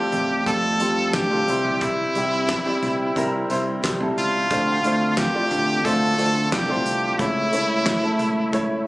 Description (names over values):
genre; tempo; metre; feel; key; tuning
piano-driven pop; 89 BPM; 4/4; straight; D minor; A4 = 440 Hz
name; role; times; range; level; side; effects
brilliant trumpet; melody; 0.0-8.9 s; E4 to A4; -23 LUFS; equal; none
clear concert grand piano; accompaniment; 0.0-8.9 s; C3 to D5; -25 LUFS; equal; none
chorused pulse-width pad; sustained chords; 0.0-8.9 s; C#3 to G4; -29 LUFS; equal; none
fingered electric bass; bass; 0.1-8.8 s; C2 to F2; -27 LUFS; equal; none
loose indie drum kit; drums; 0.1-8.7 s; handclaps, hi-hat, kick drum, snare drum, toms; -29 LUFS; equal; none
room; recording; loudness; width
light reverb; recorded on a phone in the room, club reverb; -19 LUFS; side -20 dB against mid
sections
0.0-8.9 A section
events
none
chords
0.0 Fadd9; 1.5 C; 4.5 Dm7; 7.2 A/C#